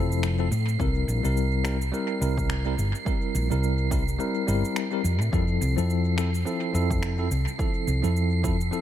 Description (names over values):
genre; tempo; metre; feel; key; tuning
sunset chillout; 106 BPM; 4/4; swing 57% on 16ths; F major; A4 = 440 Hz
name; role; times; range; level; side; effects
bell-like tine electric piano; accompaniment; 0.0-8.8 s; F3 to Bb4; -28 LUFS; moving between left 10 dB and right 7 dB; medium stereo tremolo, auto-pan, analog delay
hollow-body short-scale fingered electric bass; bass; 0.0-8.7 s; F1 to A2; -25 LUFS; equal; none
wind-like tuned noise texture; texture; 0.0-8.8 s; C7; -35 LUFS; right 6 dB; built-in reverb
electronic shaker and finger snaps; drums; 0.1-8.8 s; none; -37 LUFS; left 1 dB; overdrive, analog delay
electronic kick drum; drums; 0.8-8.6 s; none; -28 LUFS; equal; overdrive
room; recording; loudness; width
little or no reverb; echo-heavy mix; -23 LUFS; side -11 dB against mid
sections
0.0-8.8 A section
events
none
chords
0.0 Fmaj7; 0.8 C7; 5.0 Fmaj7